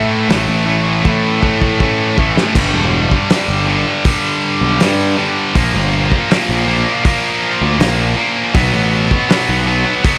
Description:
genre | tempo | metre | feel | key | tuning
quiet-loud alternative rock | 80 BPM | 4/4 | straight | unclear | A4 = 440 Hz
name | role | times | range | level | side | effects
twelve-string electric guitar | arpeggios | 0.0-2.6 s | A2 to E4 | -26 LUFS | equal | analog chorus
heavy high-gain guitar | riff | 0.0-10.2 s | G2 to B3 | -17 LUFS | equal | distortion
fuzz picked electric bass | bass | 0.0-9.8 s | E1 to A2 | -20 LUFS | equal | overdrive
loose indie drum kit | drums | 0.3-10.2 s | crash cymbal, hi-hat, kick drum, snare drum | -20 LUFS | equal | none
room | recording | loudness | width
little or no reverb | none | -14 LUFS | mono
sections
0.0-2.6 A section; 2.6-10.2 B section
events
drum fill 1.1-2.6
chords
0.0 A; 2.6 G5; 5.6 Bb5; 8.6 B5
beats
0.30 1.06 1.81 | 2.56 3.31 4.06 4.80 | 5.55 6.30 7.05 7.80 | 8.55 9.30 10.05

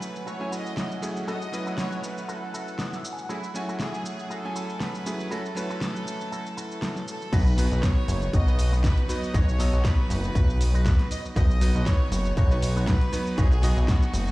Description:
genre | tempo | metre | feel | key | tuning
nu-disco, nu disco | 119 BPM | 4/4 | swing 54% on 16ths | B mixolydian | A4 = 440 Hz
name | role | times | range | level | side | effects
clear chamber violin section | melody | 0.0-14.3 s | E4 to D#5 | -35 LUFS | right 1 dB | tape echo
bright electric grand piano | accompaniment | 0.0-14.3 s | F#3 to G#5 | -32 LUFS | right 1 dB | sidechain pumping, low-pass filter
lush unison pad | sustained chords | 0.0-7.3 s | F#5 | -41 LUFS | right 2 dB | chorus, sidechain pumping
pop drum kit | drums | 0.0-14.3 s | crash cymbal, hi-hat, shaker, snare drum | -34 LUFS | equal | none
electric guitar with an envelope filter | riff | 0.2-14.0 s | B3 to G#5 | -38 LUFS | left 1 dB | wide subtle chorus, low-pass filter
chorused synth bass | bass | 7.3-14.3 s | F#1 to B1 | -23 LUFS | equal | none
electronic kick drum | drums | 7.3-14.0 s | none | -22 LUFS | equal | none
room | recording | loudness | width
light reverb | played on a big sound system in a bare room, large studio reverb | -23 LUFS | side -19 dB against mid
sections
0.0-7.3 A section; 7.3-14.3 B section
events
clean electric guitar fill 2.5-3.3; drop 7.3-14.3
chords
0.0 F#m7; 7.3 B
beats
0.27 0.77 | 1.28 1.78 2.29 2.79 | 3.29 3.80 4.30 4.81 | 5.31 5.82 6.32 6.82 | 7.33 7.83 8.34 8.84 | 9.34 9.85 10.35 10.86 | 11.36 11.87 12.37 12.87 | 13.38 13.88

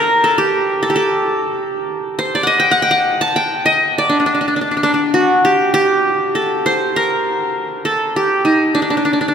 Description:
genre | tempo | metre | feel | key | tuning
arabic | 67 BPM (dotted quarters) | 6/8 | straight | D maqam hijaz | A4 = 439 Hz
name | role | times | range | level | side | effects
qanun | solo | 0.0-9.3 s | D4 to A5 | -13 LUFS | equal | none
room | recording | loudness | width
wet cathedral reverb, RT60 6.1 s | recorded in a church or concert hall | -13 LUFS | side -7 dB against mid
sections
0.0-6.0 A section; 6.0-9.3 B section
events
none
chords
none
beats
| 0.67 1.57 | 2.46 3.36 | 4.25 5.15 | 6.04 6.94 | 7.84 8.73

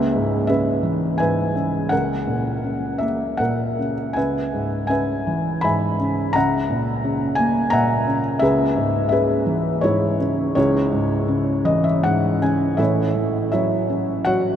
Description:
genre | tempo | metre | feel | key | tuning
classical, lyrical solo piano | 76-88 BPM | 3/4 | rubato | C# dorian | A4 = 440 Hz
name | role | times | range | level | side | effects
felt-muted upright piano | solo | 0.0-14.6 s | A1 to B5 | -18 LUFS | equal | none
room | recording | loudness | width
wet huge ambient reverb, RT60 8.5 s | in a vast, echoing space | -18 LUFS | side -9 dB against mid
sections
0.0-12.8 A section; 12.8-14.6 B section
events
felt piano fill 11.3-12.8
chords
0.0 C#m7; 1.9 F#/C#; 4.2 C#m7; 6.4 F#7/C#; 8.4 C#m7; 10.6 C#m; 12.8 A6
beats
0.49 1.20 | 1.92 2.64 3.40 | 4.17 4.90 5.64 | 6.35 7.04 7.74 | 8.42 9.12 9.84 | 10.57 11.30 12.04 | 12.79 13.53 14.26

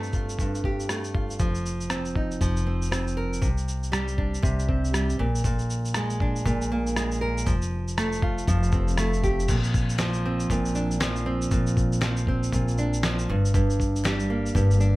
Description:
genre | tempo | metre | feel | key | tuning
acoustic pop | 119 BPM | 4/4 | swing 60% on 16ths | unclear | A4 = 440 Hz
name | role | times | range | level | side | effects
nylon-string guitar | accompaniment | 0.0-15.0 s | G2 to Bb4 | -26 LUFS | right 1 dB | none
dusty soul sampler-style drum kit | drums | 0.0-14.9 s | crash cymbal, kick drum, rim click, shaker, snare drum | -28 LUFS | equal | none
upright bass | bass | 1.4-15.0 s | F1 to C2 | -27 LUFS | left 1 dB | none
group handclap | percussion | 10.0-14.2 s | none | -42 LUFS | left 11 dB | none
room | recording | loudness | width
light reverb | none | -23 LUFS | side -19 dB against mid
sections
0.0-1.4 A section; 1.4-9.5 B section; 9.5-15.0 C section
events
none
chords
0.0 F/G; 1.4 F7sus4; 3.4 Csus2; 5.2 Bb7; 7.5 Fadd9; 9.5 Bbadd9; 13.3 Gm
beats
0.39 0.89 | 1.40 1.90 2.41 2.92 | 3.42 3.93 4.43 4.94 | 5.45 5.95 6.46 6.96 | 7.47 7.98 8.48 8.99 | 9.49 10.00 10.50 11.01 | 11.52 12.02 12.53 13.03 | 13.54 14.04 14.55

